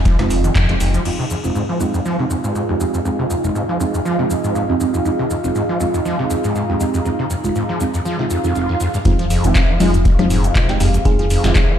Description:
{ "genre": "acid house", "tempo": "120 BPM", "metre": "4/4", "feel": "swing 55% on 16ths", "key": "F minor", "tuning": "A4 = 440 Hz", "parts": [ { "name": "warm analog pad", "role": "sustained chords", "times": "0.0-11.8 s", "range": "Eb4 to Ab5", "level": "-27 LUFS", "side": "equal", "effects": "chorus, sidechain pumping" }, { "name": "round analog bass", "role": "bass", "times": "0.0-1.0, 9.1-11.5 s", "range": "F1", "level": "-18 LUFS", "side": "equal", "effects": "tube saturation, sidechain pumping" }, { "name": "overdriven acid bass", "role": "riff", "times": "0.1-11.8 s", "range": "F1 to Ab3", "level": "-20 LUFS", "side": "equal", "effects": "distortion, tube saturation, lush chorus, sidechain pumping, ping-pong delay" }, { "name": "booming analog drum machine", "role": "drums", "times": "0.1-11.7 s", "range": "congas, crash cymbal, handclaps, hi-hat, rim click, shaker, snare drum", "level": "-24 LUFS", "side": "left 3 dB", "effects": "none" }, { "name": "dusty soul sampler-style drum kit", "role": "drums", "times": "0.1-0.9, 9.1-11.7 s", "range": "hi-hat, snare drum", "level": "-35 LUFS", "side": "left 1 dB", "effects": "none" }, { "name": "electronic kick drum", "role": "drums", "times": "0.1-0.7, 9.1-11.7 s", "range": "none", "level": "-16 LUFS", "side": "equal", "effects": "none" }, { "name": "deep mellow chord stab", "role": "stabs", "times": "0.2-11.6 s", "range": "Ab3 to G4", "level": "-22 LUFS", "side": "right 3 dB", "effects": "chorus, phaser, ping-pong delay" }, { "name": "deep dark ambient pad", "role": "texture", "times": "2.5-9.1 s", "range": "F4 to Bb5", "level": "-26 LUFS", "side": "right 3 dB", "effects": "chorus, built-in reverb, sidechain pumping" }, { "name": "swell", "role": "sound effects", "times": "8.3-9.1 s", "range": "none", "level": "-26 LUFS", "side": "right 3 dB", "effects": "none" }, { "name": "thumb-piano-like synth pluck", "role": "melody", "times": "11.1-11.3 s", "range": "Ab4", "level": "-24 LUFS", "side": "right 1 dB", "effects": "chorus, cassette tape, dub echo" } ], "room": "light reverb", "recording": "played on a big sound system in a bare room, large studio reverb", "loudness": "-15 LUFS", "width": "side -9 dB against mid", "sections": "0.0-1.1 A section; 1.1-9.1 B section; 9.1-11.8 C section", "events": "band accent 0.6; swell 8.3-9.1; drop 9.1-11.8", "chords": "0.0 Fm7" }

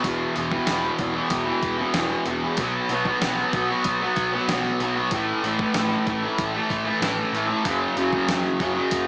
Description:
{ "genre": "rock, shoegaze and dream pop", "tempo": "95 BPM", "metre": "4/4", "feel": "straight", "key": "unclear", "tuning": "A4 = 440 Hz", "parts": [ { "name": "fuzz guitar", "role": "riff", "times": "0.0-9.1 s", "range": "E2 to B3", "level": "-21 LUFS", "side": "equal", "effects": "distortion, lush chorus" }, { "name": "hollow-body short-scale picked electric bass", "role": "bass", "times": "0.0-9.1 s", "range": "E1 to B1", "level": "-37 LUFS", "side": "equal", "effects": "none" }, { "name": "gated 80s digital drum machine", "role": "drums", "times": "0.0-9.1 s", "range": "hi-hat, kick drum, snare drum", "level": "-28 LUFS", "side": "equal", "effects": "gated reverb, gated reverb snare, overdrive" } ], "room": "light reverb", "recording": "small speaker sound", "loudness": "-21 LUFS", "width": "side -28 dB against mid", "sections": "0.0-9.1 A section", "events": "none", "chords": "0.0 E5; 2.6 B5; 5.1 A5; 7.6 F#5" }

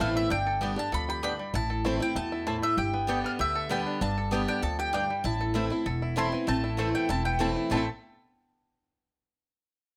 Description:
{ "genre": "bluegrass", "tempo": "194 BPM", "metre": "4/4", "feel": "straight", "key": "A minor", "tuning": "A4 = 443 Hz", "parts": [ { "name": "mandolin", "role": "melody", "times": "0.0-7.9 s", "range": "E5 to C6", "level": "-34 LUFS", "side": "equal", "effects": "none" }, { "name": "picked steel-string acoustic guitar", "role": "accompaniment", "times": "0.0-7.8 s", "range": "E2 to G4", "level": "-34 LUFS", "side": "equal", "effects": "none" }, { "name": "bluegrass banjo", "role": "arpeggios", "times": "0.0-7.9 s", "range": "E3 to A4", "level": "-38 LUFS", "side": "equal", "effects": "none" }, { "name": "mandolin", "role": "stabs", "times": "0.0-7.8 s", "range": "A3 to A5", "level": "-36 LUFS", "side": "equal", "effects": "none" }, { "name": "upright bass", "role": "bass", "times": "0.0-7.9 s", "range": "E1 to E2", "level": "-35 LUFS", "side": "equal", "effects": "none" }, { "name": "lap resonator guitar", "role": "second line", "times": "6.2-7.9 s", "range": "B3 to E4", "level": "-38 LUFS", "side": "equal", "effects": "none" } ], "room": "light reverb", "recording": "close, detailed microphones", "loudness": "-29 LUFS", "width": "mono", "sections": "0.0-6.5 A section; 6.5-7.7 B section; 7.7-8.9 C section", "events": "none", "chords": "0.3 G; 1.5 Am; 2.8 G; 5.2 Am" }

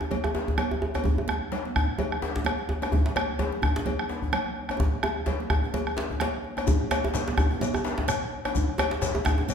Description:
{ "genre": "west african traditional, West African drum ensemble", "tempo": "128 BPM", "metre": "4/4", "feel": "swing 56% on 16ths", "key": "none", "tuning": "none", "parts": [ { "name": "djembe", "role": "percussion", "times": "0.0-9.5 s", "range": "none", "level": "-34 LUFS", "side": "left 3 dB", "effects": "none" }, { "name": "djembe", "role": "percussion", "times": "0.0-9.5 s", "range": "none", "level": "-30 LUFS", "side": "right 1 dB", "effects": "none" }, { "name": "congas", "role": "percussion", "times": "0.1-9.5 s", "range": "none", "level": "-34 LUFS", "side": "right 5 dB", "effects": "none" }, { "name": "cowbell", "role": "percussion", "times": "0.1-9.5 s", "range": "none", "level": "-35 LUFS", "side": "left 6 dB", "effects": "none" }, { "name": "bombo", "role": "percussion", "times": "0.2-9.4 s", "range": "none", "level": "-28 LUFS", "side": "equal", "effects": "none" }, { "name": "shekere", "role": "percussion", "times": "6.7-9.5 s", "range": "none", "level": "-36 LUFS", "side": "left 4 dB", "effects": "none" } ], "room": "wet large studio reverb, RT60 1.3 s", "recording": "band playing live in one room", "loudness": "-24 LUFS", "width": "side -7 dB against mid", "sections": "0.0-6.7 A section; 6.7-9.5 B section", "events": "drum fill 4.8-6.7", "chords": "none" }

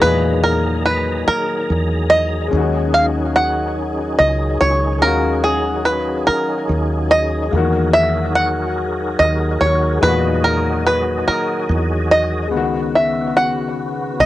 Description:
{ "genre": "slow six-eight R&B", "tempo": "48 BPM (dotted quarters)", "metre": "6/8", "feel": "straight", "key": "unclear", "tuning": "A4 = 440 Hz", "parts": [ { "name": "bluegrass banjo", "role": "melody", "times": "0.0-14.3 s", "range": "Ab4 to Gb5", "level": "-17 LUFS", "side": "right 1 dB", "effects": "cassette tape, analog delay" }, { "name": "warm concert grand piano", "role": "accompaniment", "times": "0.0-14.3 s", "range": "A#2 to G#4", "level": "-23 LUFS", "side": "left 6 dB", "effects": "cassette tape" }, { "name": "tonewheel organ", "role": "sustained chords", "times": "0.0-14.3 s", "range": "Db3 to A#5", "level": "-24 LUFS", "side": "right 1 dB", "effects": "chorus vibrato, fast rotary speaker, cassette tape" }, { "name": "woody fretless electric bass", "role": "bass", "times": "0.0-14.3 s", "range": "Cb2 to E2", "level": "-20 LUFS", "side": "equal", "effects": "lush chorus" } ], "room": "light reverb", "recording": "home recording on cassette", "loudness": "-15 LUFS", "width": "side -14 dB against mid", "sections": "0.0-14.3 A section", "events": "none", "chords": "0.0 Emaj9#11; 2.5 Ebm11; 7.5 Emaj9#11; 12.5 Db7sus4" }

